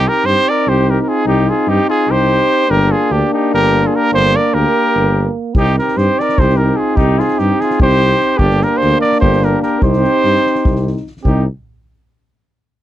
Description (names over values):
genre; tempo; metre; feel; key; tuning
balkan folk, Balkan brass band; 294 BPM (eighths); 7/8; straight; C minor; A4 = 441 Hz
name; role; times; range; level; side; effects
dark trumpet; melody; 0.0-11.4 s; G4 to D5; -15 LUFS; right 3 dB; none
warm flugelhorn; second line; 0.0-11.5 s; D4 to Bb4; -22 LUFS; left 10 dB; none
clear euphonium; accompaniment; 0.0-11.5 s; D4 to Eb4; -20 LUFS; left 6 dB; none
warm euphonium; accompaniment; 0.0-11.4 s; Bb3 to C4; -21 LUFS; right 7 dB; none
mellow tuba; bass; 0.0-11.5 s; G1 to G2; -16 LUFS; equal; none
soft-mallet drum kit; percussion; 5.5-11.5 s; kick drum, snare drum; -15 LUFS; equal; none
room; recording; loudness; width
little or no reverb; dry, close 1970s-style studio recording; -11 LUFS; side -12 dB against mid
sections
0.0-11.2 A section; 11.2-12.7 B section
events
none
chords
0.0 Cm; 2.7 Gm; 5.5 Cm; 8.4 Gm; 9.8 Cm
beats
0.02 0.23 0.43 0.64 0.84 1.04 | 1.25 1.45 1.66 1.86 2.06 2.27 2.47 | 2.68 2.88 3.08 3.29 3.49 3.70 3.90 | 4.11 4.31 4.51 4.72 4.92 5.13 5.33 | 5.54 5.74 5.95 6.15 6.35 6.56 6.76 | 6.97 7.17 7.37 7.58 7.78 7.99 8.19 | 8.39 8.60 8.80 9.01 9.21 9.41 9.62 | 9.82 10.03 10.23 10.43 10.64 10.84 11.04 | 11.25 11.45